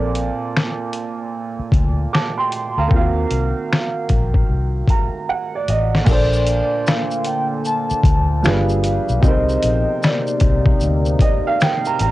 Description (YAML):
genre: lo-fi hip hop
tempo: 76 BPM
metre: 4/4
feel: swing 64% on 16ths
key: Bb major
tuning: A4 = 435 Hz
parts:
  - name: warm upright piano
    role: accompaniment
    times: 0.0-12.1 s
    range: Bb2 to D6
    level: -22 LUFS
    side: right 4 dB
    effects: cassette tape, low-pass filter
  - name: vintage muted fingered electric bass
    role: bass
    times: 0.0-12.1 s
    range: G1 to Eb2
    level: -19 LUFS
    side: left 1 dB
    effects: none
  - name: trip hop sampler-style drum kit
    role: drums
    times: 0.1-12.1 s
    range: crash cymbal, finger snaps, hi-hat, kick drum, shaker, snare drum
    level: -17 LUFS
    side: left 1 dB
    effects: cassette tape
  - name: vibraphone with soft mallets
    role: melody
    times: 6.1-11.6 s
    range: D5 to A5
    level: -22 LUFS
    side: left 2 dB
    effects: cassette tape, tape echo
  - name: deep dark ambient pad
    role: sustained chords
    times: 6.8-12.1 s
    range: C3 to A4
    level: -27 LUFS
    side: left 2 dB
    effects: chorus, built-in reverb, cassette tape
room: moderate booth ambience, RT60 0.2 s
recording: home recording on cassette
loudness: -16 LUFS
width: side -16 dB against mid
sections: 0.0-6.1 A section; 6.1-12.1 B section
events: filter sweep on upright piano 0.0-6.1; upright piano fill 4.5-6.1, 10.8-12.1; drum fill 5.3-6.1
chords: 0.0 Bbmaj7; 2.9 Ebm6; 6.1 Bbmaj7; 8.4 G7b9; 9.2 Cm9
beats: 0.54 1.33 2.12 | 2.91 3.70 4.49 5.28 | 6.07 6.86 7.65 8.44 | 9.22 10.01 10.80 11.59